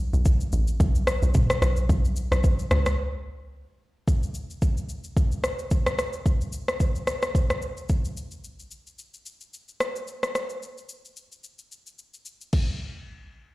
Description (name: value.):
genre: amapiano.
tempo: 110 BPM.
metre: 4/4.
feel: swing 55% on 16ths.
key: unclear.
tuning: A4 = 440 Hz.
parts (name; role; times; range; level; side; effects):
deep log drum bass; bass; 0.0-3.0 s; A1 to C#2; -23 LUFS; equal; none.
afro-pop drum kit; drums; 0.1-12.7 s; crash cymbal, kick drum, rim click, shaker, toms; -24 LUFS; equal; none.
room: light reverb, digital ambience.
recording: played on a big sound system in a bare room, large studio reverb.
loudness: -23 LUFS.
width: side -19 dB against mid.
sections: 0.0-4.1 A section; 4.1-12.8 B section.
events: drop 0.0-4.1; break 3.0-4.1.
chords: none.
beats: 0.26 0.80 1.35 | 1.89 2.44 2.98 3.53 | 4.08 4.62 5.17 5.71 | 6.26 6.80 7.35 7.89 | 8.44 8.98 9.53 10.08 | 10.62 11.17 11.71 12.26.